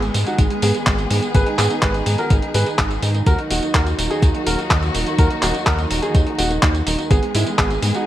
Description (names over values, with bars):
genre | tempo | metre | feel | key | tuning
italo disco | 125 BPM | 4/4 | straight | G# minor | A4 = 438 Hz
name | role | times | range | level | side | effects
warm baby grand piano | melody | 0.0-8.1 s | G#3 to B4 | -22 LUFS | right 2 dB | digital delay, shimmer reverb
warm studio string section | sustained chords | 0.0-8.1 s | D#3 to G#4 | -26 LUFS | left 2 dB | shimmer reverb
round analog bass | bass | 0.0-7.9 s | D#1 to G#2 | -21 LUFS | equal | none
clean 12-bit digital drum machine | drums | 0.0-8.0 s | handclaps, hi-hat, tambourine | -22 LUFS | equal | none
electronic kick drum | drums | 0.4-7.7 s | none | -17 LUFS | equal | none
room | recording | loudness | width
light reverb, digital ambience | vinyl crackle | -16 LUFS | side -13 dB against mid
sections
0.0-8.1 A section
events
none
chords
0.0 G#m; 3.3 D#m; 7.1 G#m